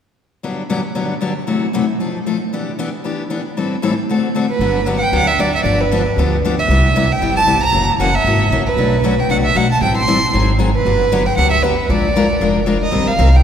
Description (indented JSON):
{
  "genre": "acoustic string swing (jazz manouche)",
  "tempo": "231 BPM",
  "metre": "4/4",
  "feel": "swing 56% on 8ths",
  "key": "G major",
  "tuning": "A4 = 438 Hz",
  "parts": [
    { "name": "picked steel-string acoustic guitar", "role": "accompaniment", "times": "0.4-13.3 s", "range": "F#2 to Bb4", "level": "-18 LUFS", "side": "left 3 dB", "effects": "none" },
    { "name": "warm violin", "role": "melody", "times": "4.5-13.4 s", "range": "B4 to C6", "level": "-16 LUFS", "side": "right 2 dB", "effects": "none" },
    { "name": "upright bass", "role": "bass", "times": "4.6-13.4 s", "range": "F1 to D2", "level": "-17 LUFS", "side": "equal", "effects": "none" }
  ],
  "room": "wet cathedral reverb, RT60 4.5 s",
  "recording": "recorded in a church or concert hall",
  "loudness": "-13 LUFS",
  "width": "side -8 dB against mid",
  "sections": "0.4-4.6 A section; 4.6-12.9 B section",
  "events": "none",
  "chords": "0.4 Gmaj7; 1.5 F#m7b5; 2.0 F7; 2.5 Em7; 3.6 Am7; 4.1 D7; 4.6 Gmaj7; 5.6 G7; 6.7 Cmaj7; 7.7 F#7; 8.8 Bm7; 9.8 Am7; 10.3 Ab7; 10.8 Gmaj7; 11.9 Bb7; 12.9 Eb69"
}